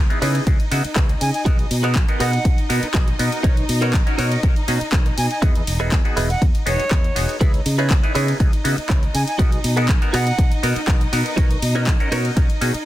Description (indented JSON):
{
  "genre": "filtered disco house",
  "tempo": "121 BPM",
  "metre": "4/4",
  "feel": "straight",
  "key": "C# dorian",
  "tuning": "A4 = 438 Hz",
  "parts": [
    { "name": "rich studio violin section", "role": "sustained chords", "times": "0.0-12.9 s", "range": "D#4 to D#5", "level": "-29 LUFS", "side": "left 1 dB", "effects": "sidechain pumping" },
    { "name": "fingered electric bass", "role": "bass", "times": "0.0-12.8 s", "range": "E1 to C#3", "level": "-22 LUFS", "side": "equal", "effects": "sidechain pumping" },
    { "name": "clav", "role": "accompaniment", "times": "0.1-12.7 s", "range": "B3 to A#4", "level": "-25 LUFS", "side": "equal", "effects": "phaser, sidechain pumping" },
    { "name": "direct-recorded clean electric guitar", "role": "riff", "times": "0.1-12.4 s", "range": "D#4 to D#5", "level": "-27 LUFS", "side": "right 3 dB", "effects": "analog chorus, sidechain pumping" },
    { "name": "house drum kit", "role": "drums", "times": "0.1-12.8 s", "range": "handclaps, hi-hat, ride cymbal", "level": "-28 LUFS", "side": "left 1 dB", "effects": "overdrive, small room reverb, sidechain pumping on hats, sidechain pumping on cymbals" },
    { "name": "electronic kick drum", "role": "drums", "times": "0.5-12.5 s", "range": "none", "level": "-18 LUFS", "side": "equal", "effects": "overdrive, small room reverb" },
    { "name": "bright reedy silver concert flute", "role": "melody", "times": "1.2-10.5 s", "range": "C#5 to G#5", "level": "-27 LUFS", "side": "right 2 dB", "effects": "sidechain pumping, dub echo" }
  ],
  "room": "little or no reverb",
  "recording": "dense, heavily limited modern master",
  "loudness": "-16 LUFS",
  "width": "side -14 dB against mid",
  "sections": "0.0-12.9 A section",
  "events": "none",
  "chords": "0.0 C#m7; 1.5 G#m7/B; 3.4 Bmaj9; 5.4 Emaj7; 7.4 C#m7; 9.4 G#m7/B; 11.4 Bmaj9",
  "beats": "0.47 0.96 | 1.46 1.96 2.45 2.95 | 3.44 3.94 4.43 4.93 | 5.43 5.92 6.42 6.91 | 7.41 7.91 8.40 8.90 | 9.39 9.89 10.38 10.88 | 11.38 11.87 12.37"
}